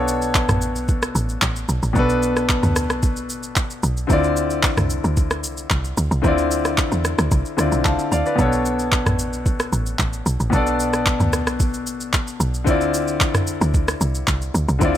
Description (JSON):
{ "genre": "amapiano", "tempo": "112 BPM", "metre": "4/4", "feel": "straight", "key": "B minor", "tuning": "A4 = 440 Hz", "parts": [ { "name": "bright concert grand piano", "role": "accompaniment", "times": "0.0-15.0 s", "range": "B2 to A5", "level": "-22 LUFS", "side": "left 2 dB", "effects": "none" }, { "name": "woody log drum bass", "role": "bass", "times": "0.0-15.0 s", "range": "A1 to E2", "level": "-23 LUFS", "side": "right 1 dB", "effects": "none" }, { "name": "smooth R&B drum kit", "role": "drums", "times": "0.1-15.0 s", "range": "handclaps, kick drum, rim click, shaker, toms", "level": "-21 LUFS", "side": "right 1 dB", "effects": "none" } ], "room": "light reverb", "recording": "none", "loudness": "-18 LUFS", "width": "side -11 dB against mid", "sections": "0.0-15.0 A section", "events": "none", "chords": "0.0 Bm7; 4.1 Dm7; 8.4 Bm7; 12.7 Dm7" }